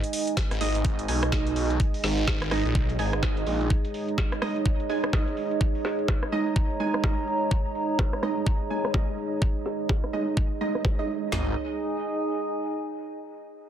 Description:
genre	bass house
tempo	126 BPM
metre	4/4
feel	swing 60% on 16ths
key	unclear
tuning	A4 = 438 Hz
part	dark analog pad	sustained chords	0.0-11.5 s	G#3 to D#5	-33 LUFS	right 2 dB	chorus, phaser, vintage 12-bit sampler grit, sidechain pumping
part	garage drum kit	drums	0.0-11.3 s	hi-hat, rim click, snare drum	-33 LUFS	equal	overdrive, low-pass filter on snare, low-pass filter on hats, low-pass filter on cymbals
part	warbly tape-like pad	texture	0.0-13.2 s	D#4 to A#5	-32 LUFS	right 2 dB	chorus, built-in reverb, sidechain pumping
part	garage drum kit	drums	0.4-11.5 s	kick drum, snare drum, toms	-26 LUFS	equal	overdrive
part	phased detuned saw bass	bass	0.5-3.7, 11.3-11.5 s	G#1 to B1	-27 LUFS	equal	phaser, tube saturation, sidechain pumping
part	orchestra-hit-like synth stab	stabs	0.6-11.5 s	G#3 to G#5	-32 LUFS	right 3 dB	built-in reverb, sidechain pumping, dub echo
room	light reverb, digital ambience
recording	dense, heavily limited modern master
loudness	-24 LUFS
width	side -10 dB against mid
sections	0.0-11.3 A section; 11.3-13.2 B section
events	filter sweep on drum 0.0-11.3; filter sweep on synth stab 0.0-11.3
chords	0.0 G#5

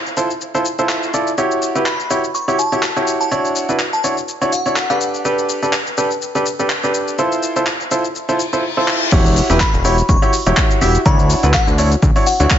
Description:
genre	piano house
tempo	124 BPM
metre	4/4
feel	swing 55% on 16ths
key	E dorian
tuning	A4 = 438 Hz
part	garage drum kit	drums	0.1-12.6 s	crash cymbal, handclaps, hi-hat, shaker	-22 LUFS	left 1 dB	none
part	bright baby grand piano	riff	0.2-12.6 s	D4 to E5	-17 LUFS	right 1 dB	sidechain pumping, dub echo
part	glassy synth bell	melody	1.9-5.1, 9.6-12.6 s	F#5 to C#6	-22 LUFS	left 1 dB	chorus, dub echo
part	reverse cymbal	sound effects	8.4-9.1 s	none	-23 LUFS	left 6 dB	none
part	fat analog bass	bass	9.1-12.5 s	E1 to D2	-15 LUFS	equal	tube saturation, sidechain pumping
part	electronic kick drum	drums	9.1-12.6 s	none	-15 LUFS	equal	none
room	light reverb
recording	nothing above 7.7 kHz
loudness	-14 LUFS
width	side -10 dB against mid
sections	0.0-9.1 A section; 9.1-12.6 B section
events	reverse cymbal 8.4-9.1; drum fill 8.9; drop 9.1-12.6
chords	0.0 Fmaj7; 1.4 Em69; 3.3 Dmaj9; 5.0 A9sus4; 7.2 Fmaj7; 9.1 Em69; 11.1 Dmaj9

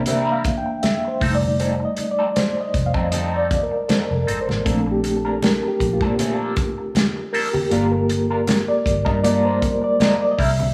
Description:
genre	lush 1970s-style soul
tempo	78 BPM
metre	4/4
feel	swing 54% on 16ths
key	unclear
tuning	A4 = 440 Hz
part	reed electric piano	accompaniment	0.0-10.7 s	E3 to G5	-23 LUFS	equal	fast tremolo
part	vintage muted fingered electric bass	bass	0.0-10.7 s	F1 to C3	-26 LUFS	equal	none
part	electric guitar at the edge of break-up	riff	0.1-10.6 s	F3 to Bb4	-30 LUFS	equal	wah
part	warm soul drum kit	drums	0.1-10.6 s	hi-hat, kick drum, snare drum	-25 LUFS	equal	none
part	congas	percussion	0.1-10.7 s	none	-32 LUFS	equal	none
room	light reverb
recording	studio reverb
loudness	-20 LUFS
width	mono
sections	0.0-10.7 A section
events	reed electric piano solo 0.0-10.7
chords	0.0 C7; 1.2 F7; 4.7 Bbmaj7; 7.7 Gm7

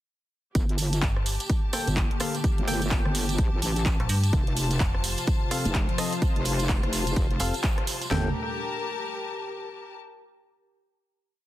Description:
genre	bass house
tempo	127 BPM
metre	4/4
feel	swing 60% on 16ths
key	G minor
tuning	A4 = 440 Hz
part	sweeping resonant pad	sustained chords	0.6-8.3 s	Bb2 to G4	-36 LUFS	equal	chorus, sidechain pumping
part	wobble bass	bass	0.6-8.3 s	F1 to Bb1	-27 LUFS	equal	chorus, tube saturation, sidechain pumping
part	house drum kit	drums	0.6-8.2 s	handclaps, kick drum, snare drum, toms	-26 LUFS	equal	overdrive
part	house drum kit	drums	0.6-8.1 s	handclaps, hi-hat, rim click	-32 LUFS	right 1 dB	overdrive
part	tambourine	percussion	0.6-8.1 s	none	-35 LUFS	right 5 dB	none
part	clear symphonic string section	texture	0.6-10.0 s	F4 to A5	-34 LUFS	left 3 dB	sidechain pumping
part	metallic FM bass	bass	1.0-7.5 s	F1 to G2	-26 LUFS	equal	sidechain pumping
part	percussive organ stab	stabs	1.7-8.3 s	Bb3 to G5	-34 LUFS	left 2 dB	chorus, sidechain pumping, digital delay
room	digital ambience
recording	dense, heavily limited modern master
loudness	-23 LUFS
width	side -14 dB against mid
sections	0.6-8.1 drop; 8.1-10.0 final chord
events	drop 0.6-8.1; band accent 7.6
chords	0.6 Gmadd9; 4.3 F; 8.1 Gmadd9

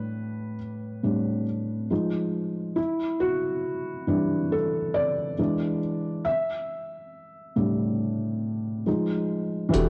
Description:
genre	lo-fi hip hop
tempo	69 BPM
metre	4/4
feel	swing 59% on 16ths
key	unclear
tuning	A4 = 439 Hz
part	felt-muted upright piano	accompaniment	0.0-9.9 s	A2 to E5	-28 LUFS	equal	low-pass filter, cassette tape
part	soft dub sub bass	bass	9.7-9.9 s	E1	-26 LUFS	equal	tube saturation
part	electronic hi-hat	drums	9.7-9.9 s	none	-40 LUFS	equal	cassette tape
room	moderate spring reverb, RT60 1.9 s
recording	home recording on cassette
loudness	-27 LUFS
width	mono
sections	0.0-9.7 A section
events	felt piano solo 0.0-9.7; kick muted 9.7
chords	0.0 A9sus4; 1.9 Fm7; 2.8 Em9; 5.4 E7; 6.3 A7sus4; 8.9 Fm7

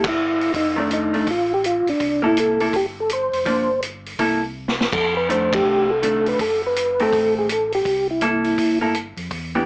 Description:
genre	soul jazz organ trio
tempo	164 BPM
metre	4/4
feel	swing 64% on 8ths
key	C major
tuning	A4 = 439 Hz
part	percussive tonewheel organ	melody	0.0-8.8 s	D4 to C5	-19 LUFS	equal	slow rotary speaker, chorus vibrato
part	vintage hollow-body jazz guitar	accompaniment	0.0-9.7 s	Eb3 to A4	-21 LUFS	equal	none
part	mellow tonewheel organ	bass	0.0-9.7 s	F1 to F2	-35 LUFS	equal	slow rotary speaker
part	vintage drum kit	drums	0.0-9.4 s	crash cymbal, hi-hat, kick drum, ride cymbal, snare drum	-26 LUFS	equal	none
room	moderate studio reverb, RT60 0.6 s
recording	small speaker sound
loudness	-17 LUFS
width	side -26 dB against mid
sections	0.0-9.7 A section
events	band accent 0.0, 5.5; drum fill 4.6-4.9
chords	0.0 C (rootless); 0.5 F6; 2.0 C6; 3.5 Gm7; 4.2 C6; 4.9 F13; 6.4 F#dim7; 7.8 C6

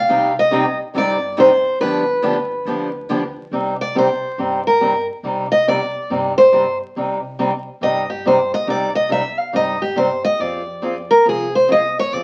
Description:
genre	acoustic string swing (jazz manouche)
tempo	140 BPM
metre	4/4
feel	swing 62% on 8ths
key	C minor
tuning	A4 = 438 Hz
part	picked steel-string acoustic guitar	melody	0.0-12.2 s	G4 to F5	-18 LUFS	equal	none
part	upright bass	bass	0.0-12.2 s	G1 to G2	-41 LUFS	equal	none
part	picked steel-string acoustic guitar	accompaniment	0.1-12.2 s	C3 to Ab4	-24 LUFS	equal	none
part	picked steel-string acoustic guitar	accompaniment	0.1-3.2 s	C3 to G4	-28 LUFS	equal	none
room	moderate studio reverb, RT60 0.7 s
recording	very old 78 rpm record, vinyl crackle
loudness	-18 LUFS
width	mono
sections	0.0-3.5 A section; 3.5-12.2 B section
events	steel-string acoustic guitar solo 3.5-12.2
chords	0.1 Cm; 1.8 G7; 3.5 Cm; 10.4 Fm

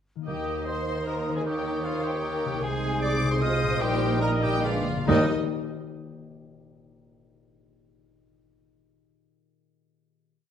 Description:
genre	classical, dramatic, fast romantic movement for symphony orchestra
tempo	133-157 BPM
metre	3/4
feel	rubato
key	Eb major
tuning	A4 = 441 Hz
part	concert harp	arpeggios	0.2-5.3 s	Bb2 to G5	-34 LUFS	left 10 dB	none
part	warm symphonic violin section	melody	0.3-5.3 s	Eb5 to Eb6	-35 LUFS	left 2 dB	none
part	clear clarinet	second line	0.3-5.3 s	Bb4 to Eb5	-36 LUFS	left 1 dB	none
part	clear cor anglais	second line	0.3-5.3 s	Eb4 to Eb5	-35 LUFS	right 2 dB	none
part	mellow hollow silver concert flute	second line	0.3-5.3 s	D6 to F6	-37 LUFS	left 1 dB	none
part	warm symphonic violin section	second line	0.3-5.3 s	Eb4 to Eb5	-37 LUFS	left 1 dB	none
part	dark symphonic viola section	accompaniment	0.3-5.3 s	G3 to Eb5	-34 LUFS	right 2 dB	none
part	mellow bassoon	accompaniment	0.3-5.3 s	G3 to Bb3	-34 LUFS	right 1 dB	none
part	mellow French horn section	sustained chords	0.3-5.3 s	G3 to F4	-34 LUFS	left 3 dB	none
part	clear symphonic double bass section	bass	0.3-5.3 s	Bb1 to Eb2	-31 LUFS	right 3 dB	none
part	warm symphonic cello section	bass	0.3-5.3 s	Eb2 to Eb3	-32 LUFS	right 2 dB	none
part	timpani	percussion	0.3-0.8, 4.6-5.3 s	Bb2 to Eb3	-34 LUFS	equal	none
room	wet recital hall reverb, RT60 1.4 s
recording	faint mains hum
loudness	-24 LUFS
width	side -9 dB against mid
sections	0.3-5.1 A section; 5.1-6.3 final chord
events	slowing down 2.0-5.1; timpani fill 4.6-5.1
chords	0.3 Eb; 2.6 Ab/C; 3.4 Fm7/C; 3.8 Eb/Bb; 4.6 Bb7b9; 5.1 Eb

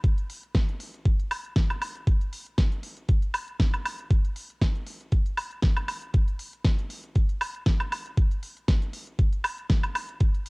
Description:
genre	nu-disco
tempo	118 BPM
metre	4/4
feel	swing 54% on 16ths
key	none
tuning	none
part	electronic kick drum	drums	0.0-10.3 s	none	-22 LUFS	equal	cassette tape
part	pop drum kit	drums	0.0-10.5 s	hi-hat, snare drum, woodblock	-30 LUFS	equal	cassette tape
room	digital ambience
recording	home recording on cassette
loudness	-24 LUFS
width	side -30 dB against mid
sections	0.0-10.5 A section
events	none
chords	none

